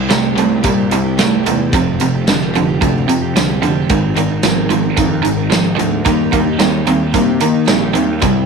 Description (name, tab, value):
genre	classic rock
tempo	111 BPM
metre	4/4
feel	straight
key	unclear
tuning	A4 = 440 Hz
part	picked steel-string acoustic guitar	accompaniment	0.0-8.5 s	C3 to Bb4	-21 LUFS	right 11 dB	none
part	overdriven electric guitar	riff	0.0-8.5 s	F2 to C4	-17 LUFS	right 11 dB	none
part	raw garage guitar	riff	0.0-8.5 s	F2 to C4	-18 LUFS	left 12 dB	overdrive
part	fuzz picked electric bass	bass	0.0-8.5 s	F1 to Eb3	-20 LUFS	equal	overdrive
part	big rock drum kit	drums	0.1-8.4 s	hi-hat, kick drum, snare drum, tambourine	-19 LUFS	equal	none
room	light reverb, small room ambience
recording	1960s-style stereo with parts hard left and right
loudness	-12 LUFS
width	side -5 dB against mid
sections	0.0-8.5 A section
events	none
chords	0.0 C; 1.7 Fsus2; 3.9 Abadd9; 6.1 Eb